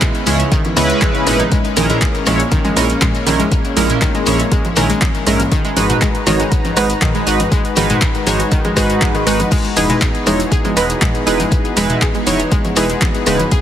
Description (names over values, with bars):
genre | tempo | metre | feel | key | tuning
progressive house | 120 BPM | 4/4 | straight | unclear | A4 = 439 Hz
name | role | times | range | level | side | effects
warm analog pad | sustained chords | 0.0-13.6 s | C#3 to A#5 | -23 LUFS | left 2 dB | chorus, sidechain pumping
analog pluck | arpeggios | 0.0-13.6 s | D#3 to G#4 | -21 LUFS | equal | chorus, sidechain pumping, ping-pong delay
deep house drum kit | drums | 0.0-13.6 s | crash cymbal, handclaps, hi-hat, rim click | -22 LUFS | equal | sidechain pumping on hats, sidechain pumping on cymbals
electronic kick drum | drums | 0.0-13.6 s | none | -16 LUFS | equal | none
shekere | percussion | 0.0-13.6 s | none | -26 LUFS | left 5 dB | none
chorused polysynth | stabs | 0.3-13.4 s | G#2 to C#5 | -17 LUFS | right 1 dB | sidechain pumping, ping-pong delay
dark detuned saw bass | bass | 0.3-13.4 s | E1 to C#2 | -21 LUFS | equal | sidechain pumping
deep house drum kit | percussion | 0.3-13.5 s | congas, rim click, toms | -24 LUFS | equal | sidechain pumping on perc, sidechain pumping on toms, sidechain pumping on snare
room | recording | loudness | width
light reverb, digital ambience | heavily compressed radio sound | -12 LUFS | side -10 dB against mid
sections
0.0-13.6 A section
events
none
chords
0.0 C#m7; 1.5 A#m7b5; 5.5 G#m7; 9.5 Emaj7